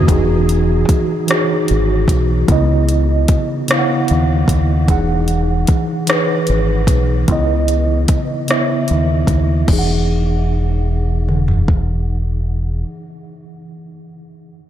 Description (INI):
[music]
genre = slow six-eight R&B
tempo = 50 BPM (dotted quarters)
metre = 6/8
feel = straight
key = E major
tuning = A4 = 438 Hz
[part]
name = mellow tine electric piano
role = accompaniment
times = 0.0-14.6 s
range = C#3 to F#5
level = -18 LUFS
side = right 1 dB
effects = medium stereo tremolo, low-pass filter
[part]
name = deep dub fingered electric bass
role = bass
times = 0.0-12.8 s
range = E1 to D#2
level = -16 LUFS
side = equal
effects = none
[part]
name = smooth R&B drum kit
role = drums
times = 0.1-11.9 s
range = crash cymbal, hi-hat, kick drum, rim click, toms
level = -18 LUFS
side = equal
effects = overdrive
[sound]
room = moderate huge ambient reverb, RT60 8.0 s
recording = dreamy mix soaked in reverb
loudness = -13 LUFS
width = side -11 dB against mid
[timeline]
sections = 0.1-9.7 A section; 9.7-12.1 B section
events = filter sweep on tine electric piano 0.1-9.7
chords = 0.1 Emaj9; 2.5 C#m9; 4.9 Emaj9; 7.3 C#m9; 9.7 Emaj9